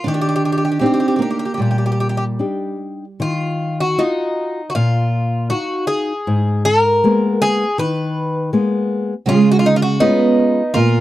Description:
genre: fado-style ballad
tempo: 78 BPM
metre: 4/4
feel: uneven beats, rubato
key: Eb major, Eb minor from 3.2 s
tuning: A4 = 440 Hz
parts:
  - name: Irish bouzouki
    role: melody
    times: 0.0-11.0 s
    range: Eb4 to Cb5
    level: -19 LUFS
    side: equal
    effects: none
  - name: fingerpicked twelve-string acoustic guitar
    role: second line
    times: 0.0-2.8, 9.3-11.0 s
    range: G3 to D4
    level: -17 LUFS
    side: right 5 dB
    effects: none
  - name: nylon-string guitar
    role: accompaniment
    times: 0.1-11.0 s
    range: Ab2 to F5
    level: -18 LUFS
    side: left 2 dB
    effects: none
room: light reverb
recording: dry, close 1970s-style studio recording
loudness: -15 LUFS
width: side -14 dB against mid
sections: 0.0-3.2 A section; 3.2-11.0 B section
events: none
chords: 0.1 Ebmaj7; 3.2 Ebmadd9; 6.3 Abmadd9; 9.3 Db

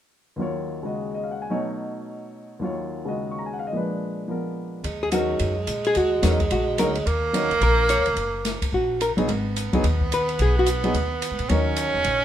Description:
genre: jazz, small-group swing and bop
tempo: 216 BPM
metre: 4/4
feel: swing 62% on 8ths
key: Eb minor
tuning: A4 = 440 Hz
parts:
  - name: warm baby grand piano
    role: accompaniment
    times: 0.4-12.2 s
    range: Eb2 to Db6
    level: -26 LUFS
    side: left 1 dB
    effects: none
  - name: bright tenor saxophone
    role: second line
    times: 4.8-12.2 s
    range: Ab3 to Db4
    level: -25 LUFS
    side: right 3 dB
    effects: none
  - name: upright bass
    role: bass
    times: 4.8-12.2 s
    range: Gb1 to Bb2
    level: -25 LUFS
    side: equal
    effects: none
  - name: open jazz drum kit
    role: drums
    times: 4.8-12.1 s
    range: hi-hat, kick drum, ride cymbal, snare drum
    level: -31 LUFS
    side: equal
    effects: none
  - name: hollow-body jazz guitar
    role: melody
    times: 5.0-10.7 s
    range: Gb4 to Db5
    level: -23 LUFS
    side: left 1 dB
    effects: none
room: moderate club reverb, RT60 0.8 s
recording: minimal, uncompressed stereo recording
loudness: -21 LUFS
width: side -10 dB against mid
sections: 0.4-4.8 A section; 4.8-12.2 B section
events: none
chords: 0.4 Ebm9; 1.5 B7; 2.6 Ebm9; 3.7 Bb7b9; 4.8 Ebm7; 9.3 Abm; 11.5 Ebm7

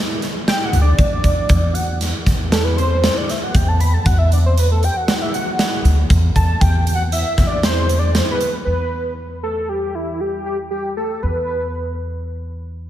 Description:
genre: progressive instrumental, band music in an uneven meter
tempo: 117 BPM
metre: 5/4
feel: straight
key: E minor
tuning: A4 = 442 Hz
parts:
  - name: big rock drum kit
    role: drums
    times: 0.2-8.5 s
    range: hi-hat, kick drum, snare drum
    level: -19 LUFS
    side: equal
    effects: none
  - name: wide unison lead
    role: melody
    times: 0.5-12.0 s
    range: E4 to B5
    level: -22 LUFS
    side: equal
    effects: slapback echo
  - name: upright bass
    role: bass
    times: 0.7-12.9 s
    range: D2 to E2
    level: -18 LUFS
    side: equal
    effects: none
room: light reverb, small room reverb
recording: none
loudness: -15 LUFS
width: side -12 dB against mid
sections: 0.0-8.7 A section; 8.7-12.9 B section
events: analog synth lead solo 0.0-8.7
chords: 0.0 D9; 8.7 Em

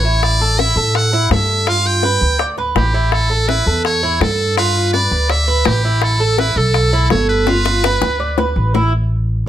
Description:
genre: latin, Cuban son and guajira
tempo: 166 BPM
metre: 4/4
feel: straight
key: A major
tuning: A4 = 440 Hz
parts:
  - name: trumpet with metal mute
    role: melody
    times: 0.0-8.5 s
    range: G4 to G5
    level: -18 LUFS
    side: equal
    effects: none
  - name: Cuban tres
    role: arpeggios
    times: 0.0-8.9 s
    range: E4 to D5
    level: -19 LUFS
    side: right 4 dB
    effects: none
  - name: upright bass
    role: bass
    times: 0.0-9.5 s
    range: G1 to A2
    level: -17 LUFS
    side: equal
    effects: none
  - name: bongos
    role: percussion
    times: 0.2-8.8 s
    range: none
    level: -21 LUFS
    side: left 8 dB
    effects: none
room: light reverb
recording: none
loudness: -13 LUFS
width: side -11 dB against mid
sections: 0.0-8.9 A section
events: drum fill 7.5-8.9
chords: 0.2 A5; 1.7 G7; 3.1 Asus2; 4.6 G7; 6.0 Asus2; 7.5 G7; 8.9 A5

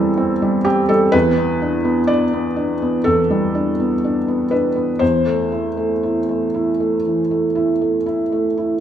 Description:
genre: neoclassical minimalist piano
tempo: 59-64 BPM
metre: 4/4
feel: rubato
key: unclear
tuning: A4 = 443 Hz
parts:
  - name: felt-muted upright piano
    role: solo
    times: 0.0-8.8 s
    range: E2 to D5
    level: -16 LUFS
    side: equal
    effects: none
room: moderate scoring stage reverb, RT60 1.5 s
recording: recorded in a church or concert hall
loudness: -16 LUFS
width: side -9 dB against mid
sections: 0.0-8.8 A section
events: none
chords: 0.0 C/E; 1.1 G/E; 5.0 Am/E

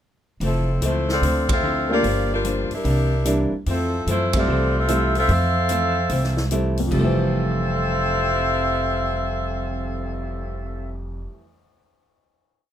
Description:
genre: jazz, big band swing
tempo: 148 BPM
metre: 4/4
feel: swing 65% on 8ths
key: F major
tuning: A4 = 440 Hz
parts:
  - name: archtop guitar, miked and amplified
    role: accompaniment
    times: 0.4-11.4 s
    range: F2 to E4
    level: -30 LUFS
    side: left 3 dB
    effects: none
  - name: upright bass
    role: bass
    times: 0.4-11.3 s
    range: F1 to Gb2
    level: -24 LUFS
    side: equal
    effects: none
  - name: swinging big-band drum kit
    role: drums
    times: 0.4-10.1 s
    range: crash cymbal, cymbal swell, hi-hat, kick drum, ride cymbal, snare drum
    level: -29 LUFS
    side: equal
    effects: none
  - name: warm saxophone section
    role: melody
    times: 0.5-10.9 s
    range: F3 to F5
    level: -23 LUFS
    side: left 1 dB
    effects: none
  - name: warm grand piano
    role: accompaniment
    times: 1.9-11.4 s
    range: F2 to E5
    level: -26 LUFS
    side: right 1 dB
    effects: none
room: moderate booth ambience, RT60 0.2 s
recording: minimal, uncompressed stereo recording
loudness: -19 LUFS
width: side -10 dB against mid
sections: 0.4-6.9 A section; 6.9-10.2 final chord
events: band accent 1.4, 4.3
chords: 0.4 Fmaj7; 1.2 Dm9; 2.0 Gm7; 2.9 C9; 3.7 Fmaj7

